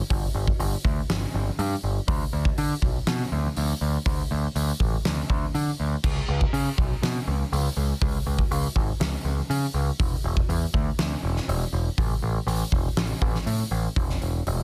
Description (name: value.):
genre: rock, shoegaze and dream pop.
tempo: 121 BPM.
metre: 4/4.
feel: straight.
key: unclear.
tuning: A4 = 440 Hz.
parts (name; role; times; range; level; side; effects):
growling picked electric bass; bass; 0.1-14.6 s; E1 to D3; -28 LUFS; equal; overdrive.
huge arena drum kit; drums; 0.1-14.6 s; crash cymbal, hi-hat, kick drum, snare drum; -29 LUFS; equal; none.
room: little or no reverb.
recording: dense, heavily limited modern master.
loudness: -25 LUFS.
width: mono.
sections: 0.0-14.0 A section.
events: none.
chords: none.